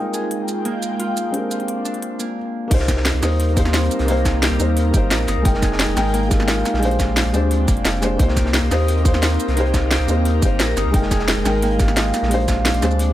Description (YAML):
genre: liquid drum and bass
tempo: 175 BPM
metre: 4/4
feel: straight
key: C minor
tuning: A4 = 440 Hz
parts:
  - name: felt-muted upright piano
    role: accompaniment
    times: 0.0-13.1 s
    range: Ab3 to G5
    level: -23 LUFS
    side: left 1 dB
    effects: tape echo
  - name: airy breathy pad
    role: sustained chords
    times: 0.0-13.1 s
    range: G3 to G5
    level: -27 LUFS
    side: left 1 dB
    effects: chorus, phaser, sidechain pumping
  - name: Celtic harp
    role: arpeggios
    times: 0.0-13.1 s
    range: Bb3 to C5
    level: -26 LUFS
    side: equal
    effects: tape echo
  - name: drum and bass drum kit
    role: drums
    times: 0.1-13.1 s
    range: crash cymbal, hi-hat, shaker, snare drum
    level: -23 LUFS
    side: equal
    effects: none
  - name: warm sub bass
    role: bass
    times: 2.7-13.1 s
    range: F1 to Eb2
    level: -20 LUFS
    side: equal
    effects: none
  - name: crunchy breakbeat drum kit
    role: drums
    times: 2.7-13.1 s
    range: hi-hat, snare drum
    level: -30 LUFS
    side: equal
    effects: high-pass filter on hats, high-pass filter on snare, high-pass filter on room
  - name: electronic kick drum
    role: drums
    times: 2.7-12.6 s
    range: none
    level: -18 LUFS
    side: equal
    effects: none
room: small room ambience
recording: none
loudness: -16 LUFS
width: side -13 dB against mid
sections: 0.0-2.7 A section; 2.7-13.1 B section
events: drop 2.7-13.1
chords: 0.0 Fm11; 1.3 Bb13; 2.7 Cm7; 5.5 Fm11; 6.8 Bb13; 8.2 Cm7; 10.9 Fm11; 12.3 Bb13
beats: 0.31 0.65 1.00 | 1.34 1.68 2.02 2.37 | 2.71 3.05 3.40 3.74 | 4.08 4.42 4.77 5.11 | 5.45 5.80 6.14 6.48 | 6.82 7.17 7.51 7.85 | 8.20 8.54 8.88 9.22 | 9.57 9.91 10.25 10.60 | 10.94 11.28 11.62 11.97 | 12.31 12.65 13.00